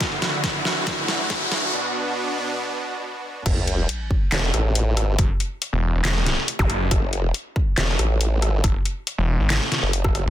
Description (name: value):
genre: heavy wobble dubstep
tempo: 139 BPM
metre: 4/4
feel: half-time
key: F# minor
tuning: A4 = 438 Hz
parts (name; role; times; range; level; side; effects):
- supersaw chords; sustained chords; 0.0-3.4 s; D2 to F#4; -26 LUFS; right 1 dB; sidechain pumping, low-pass filter
- dubstep drum kit; drums; 0.0-10.2 s; crash cymbal, handclaps, hi-hat, rim click, snare drum; -24 LUFS; equal; soft clipping on snare
- electronic kick drum; drums; 0.0-10.1 s; none; -23 LUFS; equal; none
- riser, sub drop and zap; sound effects; 0.0-6.7 s; none; -28 LUFS; equal; none
- formant-sweep wobble bass; bass; 3.5-10.2 s; E1 to A1; -21 LUFS; equal; chorus, overdrive
- snarling distorted saw bass; bass; 5.2-10.3 s; E1 to G#1; -21 LUFS; equal; distortion, overdrive
room: little or no reverb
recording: dense, heavily limited modern master, high-pass filter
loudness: -20 LUFS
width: side -12 dB against mid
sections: 0.0-3.5 A section; 3.5-10.3 B section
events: build-up 0.0-3.5; drum fill 0.0-1.7; riser 0.0-1.7; filter sweep on supersaw synth 0.0-3.5; break 1.7-3.5; drop 3.5-10.3; impact 3.5-5.2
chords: 0.0 Dadd9; 1.7 Bm; 3.5 F#m